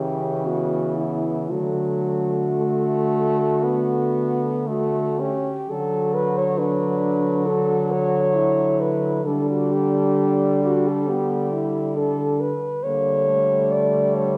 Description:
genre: classical, lyrical piece for horn quartet.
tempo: 53-70 BPM.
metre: 4/4.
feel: rubato.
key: D major.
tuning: A4 = 435 Hz.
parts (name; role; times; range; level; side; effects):
dark French horn; melody; 0.0-14.4 s; E4 to D5; -25 LUFS; equal; none.
mellow French horn; second line; 0.0-14.4 s; A3 to F#4; -30 LUFS; equal; none.
warm French horn; accompaniment; 0.0-14.4 s; E3 to C#4; -29 LUFS; equal; none.
mellow French horn; bass; 0.0-14.4 s; C#3 to D3; -28 LUFS; equal; none.
room: wet recital hall reverb, RT60 1.8 s.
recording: heard from further back in the room.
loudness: -22 LUFS.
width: mono.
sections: 0.0-5.7 A section; 5.7-14.4 A section.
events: none.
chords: 0.0 C#m7b5; 1.5 D; 9.3 G5/D.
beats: 0.47 | 1.51 2.60 3.65 4.68 | 5.69 6.58 7.46 8.35 | 9.25 10.18 11.09 11.96 | 12.84 13.72.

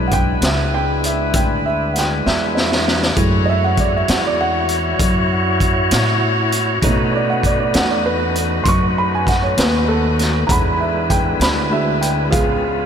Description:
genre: slow blues.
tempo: 66 BPM (dotted quarters).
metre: 12/8.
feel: straight.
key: E mixolydian.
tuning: A4 = 440 Hz.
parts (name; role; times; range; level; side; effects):
bright tonewheel organ; sustained chords; 0.0-12.9 s; G#3 to C#5; -20 LUFS; left 1 dB; slow rotary speaker, overdrive.
upright bass; bass; 0.0-12.9 s; B1 to B2; -20 LUFS; equal; none.
dark upright piano; accompaniment; 0.1-12.9 s; G#3 to C#6; -20 LUFS; right 2 dB; none.
raw garage drum kit; drums; 0.1-12.5 s; hi-hat, kick drum, snare drum; -20 LUFS; left 1 dB; none.
room: moderate huge ambient reverb, RT60 7.8 s.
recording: dreamy mix soaked in reverb.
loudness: -14 LUFS.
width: side -8 dB against mid.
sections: 0.0-12.9 A section.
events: upright piano solo 0.0-12.9; drum fill 2.3-3.2.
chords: 0.0 E7; 3.2 F#m7; 6.8 B7; 10.5 E7; 12.3 C#7.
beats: 0.42 1.34 2.25 | 3.17 4.08 5.00 5.91 | 6.83 7.74 8.66 9.57 | 10.49 11.40 12.32.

